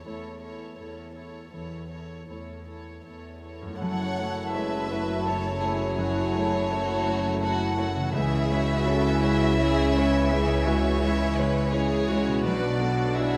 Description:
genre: cinematic, emotional film score for orchestra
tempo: 83 BPM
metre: 3/4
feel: rubato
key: unclear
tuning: A4 = 440 Hz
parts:
  - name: warm chamber violin section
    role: melody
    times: 0.0-13.4 s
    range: B4 to F#5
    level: -36 LUFS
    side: equal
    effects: none
  - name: warm chamber violin section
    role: second line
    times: 0.0-13.4 s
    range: F#4 to C#5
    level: -38 LUFS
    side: equal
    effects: none
  - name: dark studio viola section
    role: accompaniment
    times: 0.0-13.4 s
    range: G#3 to A4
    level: -38 LUFS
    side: equal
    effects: none
  - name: warm grand piano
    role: accompaniment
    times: 0.0-13.4 s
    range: B1 to D5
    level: -34 LUFS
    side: equal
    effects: none
  - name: concert harp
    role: arpeggios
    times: 0.0-13.4 s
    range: F#2 to E5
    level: -39 LUFS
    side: equal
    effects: none
  - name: warm symphonic cello section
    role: bass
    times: 0.1-13.4 s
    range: E2 to C#3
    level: -34 LUFS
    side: equal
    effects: none
  - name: mellow hollow large flute ensemble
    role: second line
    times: 3.8-13.4 s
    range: F#5 to A5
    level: -37 LUFS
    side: equal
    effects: none
  - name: warm clarinet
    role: second line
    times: 3.8-13.4 s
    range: D4 to E4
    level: -38 LUFS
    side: equal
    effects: none
  - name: mellow French horn section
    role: sustained chords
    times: 3.8-13.4 s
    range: E3 to E4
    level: -34 LUFS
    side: equal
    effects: none
  - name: dark chamber double bass section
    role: bass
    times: 3.8-13.4 s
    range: F#1 to C#2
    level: -32 LUFS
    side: equal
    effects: none
room: moderate scoring stage reverb, RT60 1.6 s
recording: none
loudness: -25 LUFS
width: mono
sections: 0.0-3.8 A section; 3.8-13.4 B section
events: none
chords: 0.0 A/E; 3.8 F#m7; 8.1 C#m; 12.4 Bm

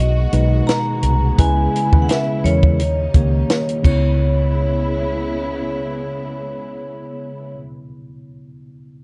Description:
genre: lush 1970s-style soul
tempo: 85 BPM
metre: 4/4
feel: swing 54% on 16ths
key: C# dorian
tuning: A4 = 440 Hz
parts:
  - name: vibraphone with hard mallets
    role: melody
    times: 0.0-7.5 s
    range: C#5 to A#5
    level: -26 LUFS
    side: equal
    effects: none
  - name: warm studio string section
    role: sustained chords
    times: 0.0-7.5 s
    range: C#3 to F#4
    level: -31 LUFS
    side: equal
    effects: none
  - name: vintage muted fingered electric bass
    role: bass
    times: 0.0-7.6 s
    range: B1 to E2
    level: -20 LUFS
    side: equal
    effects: none
  - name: tine electric piano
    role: accompaniment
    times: 0.3-9.0 s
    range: B2 to C#5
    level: -26 LUFS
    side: equal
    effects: overdrive
  - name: compact cocktail drum kit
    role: drums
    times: 0.3-4.0 s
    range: crash cymbal, hi-hat, kick drum, snare drum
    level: -18 LUFS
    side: equal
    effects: none
  - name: large celesta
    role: texture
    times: 3.8-7.5 s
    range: none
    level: barely audible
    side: none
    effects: none
room: little or no reverb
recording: dark, warm production, nothing above 10.6 kHz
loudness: -18 LUFS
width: mono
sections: 0.0-4.2 A section; 4.2-7.0 B section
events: none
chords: 0.0 B6; 1.4 C#m7; 2.8 D#7; 3.8 C#m7

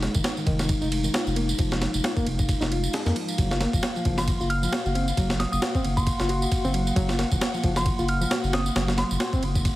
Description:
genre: breakbeat, breaks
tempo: 134 BPM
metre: 4/4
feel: swing 57% on 16ths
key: unclear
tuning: A4 = 440 Hz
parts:
  - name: dark analog pad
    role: sustained chords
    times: 0.0-9.8 s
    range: Ab3 to Gb5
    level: -31 LUFS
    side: equal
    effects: chorus, sidechain pumping
  - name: overdriven reed electric piano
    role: riff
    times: 0.0-9.4 s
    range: Eb3 to Gb4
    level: -30 LUFS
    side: left 1 dB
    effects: fast tremolo, tube saturation, low-pass filter, ping-pong delay
  - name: saturated sub bass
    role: bass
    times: 0.0-9.7 s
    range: F1 to F2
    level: -27 LUFS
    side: equal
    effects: none
  - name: breakbeat sampler-style drum kit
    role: drums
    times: 0.0-9.8 s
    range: kick drum, ride cymbal, snare drum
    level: -26 LUFS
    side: equal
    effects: studio ambience
  - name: tambourine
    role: drums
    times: 0.1-9.8 s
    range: none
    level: -36 LUFS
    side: right 3 dB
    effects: studio ambience
  - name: glassy synth bell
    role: melody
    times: 4.2-9.3 s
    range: C6 to F6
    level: -32 LUFS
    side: equal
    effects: chorus, telephone sound, ping-pong delay
room: light reverb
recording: heavily compressed radio sound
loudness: -22 LUFS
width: side -16 dB against mid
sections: 0.0-9.8 A section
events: filter sweep on reed electric piano 0.0-9.8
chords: 0.0 Fm7; 3.4 Gbmaj7

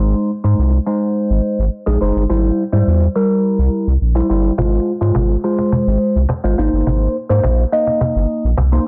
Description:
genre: dance-pop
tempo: 105 BPM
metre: 4/4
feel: straight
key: unclear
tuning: A4 = 439 Hz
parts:
  - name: bell-like tine electric piano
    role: accompaniment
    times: 0.0-8.8 s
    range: G3 to Eb5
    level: -19 LUFS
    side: equal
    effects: phaser
  - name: warm sub bass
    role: bass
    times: 0.0-8.8 s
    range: Gb1 to Ab2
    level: -17 LUFS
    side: equal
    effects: none
  - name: cajon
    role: drums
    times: 4.6-8.7 s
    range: none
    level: -23 LUFS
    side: equal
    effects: none
room: light reverb, small room ambience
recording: dense, heavily limited modern master, low-pass filter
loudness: -16 LUFS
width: mono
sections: 0.0-8.9 A section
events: filter sweep 0.0-8.9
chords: 0.0 Ab; 2.3 C/Ab; 4.6 Fm/Ab; 6.6 Cm7

